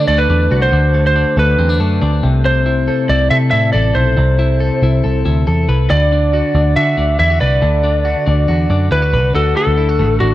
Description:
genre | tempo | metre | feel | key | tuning
jangly indie pop | 139 BPM | 4/4 | straight | A dorian | A4 = 440 Hz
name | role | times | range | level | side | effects
lightly driven lead guitar | melody | 0.0-10.3 s | F#4 to E5 | -16 LUFS | equal | tape echo
twelve-string electric guitar | arpeggios | 0.0-10.3 s | C3 to B4 | -18 LUFS | left 2 dB | tube saturation, tape echo
vintage muted picked electric bass | bass | 0.0-10.3 s | A1 to D3 | -14 LUFS | equal | none
room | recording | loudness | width
light reverb, digital ambience | echo-heavy mix | -11 LUFS | side -15 dB against mid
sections
0.0-9.4 A section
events
none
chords
0.0 D; 2.2 Am; 5.9 Bm; 9.4 D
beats
0.29 | 0.72 1.15 1.59 2.02 | 2.45 2.88 3.31 3.74 | 4.17 4.61 5.04 5.47 | 5.90 6.33 6.76 7.20 | 7.63 8.06 8.49 8.92 | 9.35 9.78 10.21

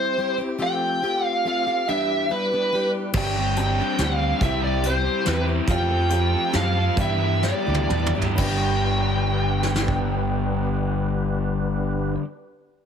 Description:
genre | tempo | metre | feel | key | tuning
folk rock and heartland rock | 120-142 BPM | 3/4 | straight | G mixolydian | A4 = 440 Hz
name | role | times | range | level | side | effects
bluesy overdriven lead guitar | melody | 0.0-12.2 s | B4 to G5 | -25 LUFS | right 1 dB | distortion
picked plugged-in steel-string acoustic guitar | accompaniment | 0.0-12.2 s | G2 to B4 | -30 LUFS | left 4 dB | none
tonewheel organ | sustained chords | 0.0-12.2 s | G3 to C5 | -34 LUFS | right 1 dB | slow rotary speaker, overdrive, chorus vibrato
dark upright piano | accompaniment | 3.1-12.1 s | G4 to A5 | -38 LUFS | right 3 dB | none
fingered electric bass | bass | 3.1-12.1 s | G1 to G2 | -24 LUFS | equal | none
soft brush drum kit | drums | 3.1-10.0 s | crash cymbal, hi-hat, kick drum, snare drum, toms | -27 LUFS | equal | none
raw garage guitar | riff | 3.2-12.2 s | G2 to A4 | -26 LUFS | left 2 dB | overdrive
room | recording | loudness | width
light reverb | heavily compressed radio sound | -20 LUFS | side -7 dB against mid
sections
0.0-8.4 A section; 8.4-11.4 B section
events
slowing down 5.7-8.4; drum fill 7.4-8.4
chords
0.0 C; 0.6 Fadd9; 1.9 Em7/G; 3.1 Gsus4; 4.4 C; 5.7 Fadd9; 7.0 Em7/G; 8.4 G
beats
0.18 | 0.60 1.02 1.45 | 1.87 2.29 2.72 | 3.14 3.56 3.98 | 4.41 4.83 5.25 | 5.68 6.11 6.54 | 6.98 7.43 7.90 | 8.39 8.89 9.39 | 9.89 10.39 10.89

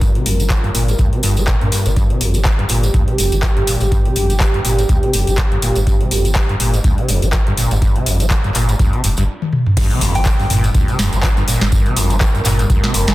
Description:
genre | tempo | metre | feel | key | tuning
acid house | 123 BPM | 4/4 | swing 56% on 16ths | G minor | A4 = 440 Hz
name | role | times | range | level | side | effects
dark analog pad | sustained chords | 0.0-13.1 s | G3 to Bb4 | -25 LUFS | right 1 dB | chorus, sidechain pumping
acid bass, saw | riff | 0.0-13.1 s | F2 to Bb3 | -19 LUFS | equal | overdrive, ensemble chorus, digital delay
saturated sub bass | bass | 0.0-13.1 s | F1 to G2 | -19 LUFS | equal | sidechain pumping
booming analog drum machine | drums | 0.0-13.1 s | crash cymbal, handclaps, hi-hat, snare drum, toms | -20 LUFS | left 1 dB | none
electronic kick drum | drums | 0.0-12.8 s | none | -17 LUFS | equal | none
tambourine | percussion | 0.0-13.1 s | none | -26 LUFS | right 2 dB | none
impact | sound effects | 9.8-11.7 s | none | -26 LUFS | equal | none
soft synth bell | melody | 10.2-10.3 s | G5 | -27 LUFS | left 1 dB | chorus, phaser, dub echo
room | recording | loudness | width
light reverb | dense, heavily limited modern master | -13 LUFS | side -17 dB against mid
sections
0.0-9.8 A section; 9.8-13.1 B section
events
filter sweep on acid bass 0.0-9.8; drum fill 9.4-9.8; drop 9.8-13.1; impact 9.8-11.7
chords
0.0 Gm7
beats
| 0.01 0.50 0.99 1.48 | 1.97 2.45 2.94 3.43 | 3.92 4.40 4.89 5.38 | 5.87 6.36 6.84 7.33 | 7.82 8.31 8.79 9.28 | 9.77 10.26 10.74 11.23 | 11.72 12.21 12.70

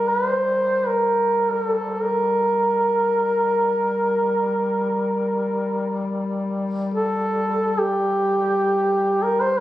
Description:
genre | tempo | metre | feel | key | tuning
caucasian folk, Caucasian lament | free time | none | none | G minor | A4 = 441 Hz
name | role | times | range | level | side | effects
mellow duduk | melody | 0.0-9.6 s | G4 to C5 | -20 LUFS | equal | none
mellow duduk | drone | 0.0-9.6 s | G3 | -27 LUFS | left 2 dB | none
room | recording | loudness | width
moderate cathedral reverb, RT60 5.0 s | recorded on a phone in the room, studio reverb, compression | -19 LUFS | side -14 dB against mid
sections
0.0-9.6 A section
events
none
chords
none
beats
free time

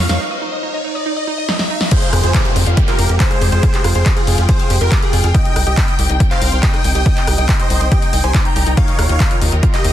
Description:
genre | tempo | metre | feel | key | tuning
uplifting trance | 140 BPM | 4/4 | straight | F minor | A4 = 440 Hz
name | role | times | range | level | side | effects
big supersaw lead | melody | 0.0-9.9 s | F4 to Bb5 | -22 LUFS | equal | phaser, cassette tape, sidechain pumping, ping-pong delay
plucky unison lead | second line | 0.0-9.9 s | Ab4 to Bb5 | -27 LUFS | equal | sidechain pumping, tape echo
warm studio string section | sustained chords | 0.0-9.9 s | Eb3 to G5 | -26 LUFS | left 3 dB | sidechain pumping
analog pluck | arpeggios | 0.0-9.9 s | Eb4 to G5 | -25 LUFS | right 2 dB | chorus, sidechain pumping, tape echo
tight sequencer bass | bass | 0.0-9.9 s | C2 to F2 | -15 LUFS | equal | sidechain pumping
riser and downlifter | sound effects | 0.0-5.3 s | none | -24 LUFS | left 1 dB | none
punchy analog drum machine | drums | 0.1-9.9 s | crash cymbal, handclaps, hi-hat, rim click, snare drum | -22 LUFS | left 1 dB | none
electronic kick drum | drums | 1.9-9.7 s | none | -15 LUFS | equal | overdrive
room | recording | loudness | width
little or no reverb | dense, heavily limited modern master | -12 LUFS | side -12 dB against mid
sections
0.0-1.9 A section; 1.9-9.9 B section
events
build-up 0.0-1.9; drum fill 0.0, 1.5-1.9; riser 0.0-1.9; break 0.2-1.9; drop 1.9-9.9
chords
0.0 N.C.; 1.9 Fmadd9; 5.3 Cm; 8.8 Ebadd9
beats
| 0.20 0.63 1.06 1.49 | 1.92 2.34 2.77 3.20 | 3.63 4.06 4.49 4.92 | 5.34 5.77 6.20 6.63 | 7.06 7.49 7.92 8.34 | 8.77 9.20 9.63

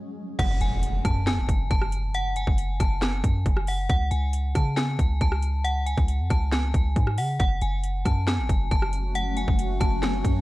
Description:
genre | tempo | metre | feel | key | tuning
hip hop, trap | 137 BPM | 4/4 | half-time | F# minor | A4 = 441 Hz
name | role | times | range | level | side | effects
granular cloud pad | sustained chords | 0.0-0.4, 8.6-10.4 s | F#3 to G#4 | -34 LUFS | left 1 dB | built-in reverb
metallic FM bell | melody | 0.4-10.4 s | F#5 to A5 | -30 LUFS | left 1 dB | chorus
warm 808-style bass | bass | 0.4-10.4 s | F#1 to C#3 | -26 LUFS | equal | none
trap drum kit | drums | 0.4-10.3 s | crash cymbal, handclaps, hi-hat, kick drum, rim click, snare drum | -25 LUFS | equal | overdrive
impact | sound effects | 0.4-2.1 s | none | -33 LUFS | equal | none
room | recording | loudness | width
little or no reverb | dark, warm production | -22 LUFS | side -18 dB against mid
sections
0.4-10.4 A section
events
break 0.0-0.4; impact 0.4-2.1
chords
0.4 F#madd9; 3.9 C#5; 7.4 F#madd9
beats
| 0.39 0.83 1.27 1.71 | 2.14 2.58 3.02 3.46 | 3.90 4.33 4.77 5.21 | 5.65 6.08 6.52 6.96 | 7.40 7.84 8.28 8.71 | 9.15 9.59 10.03

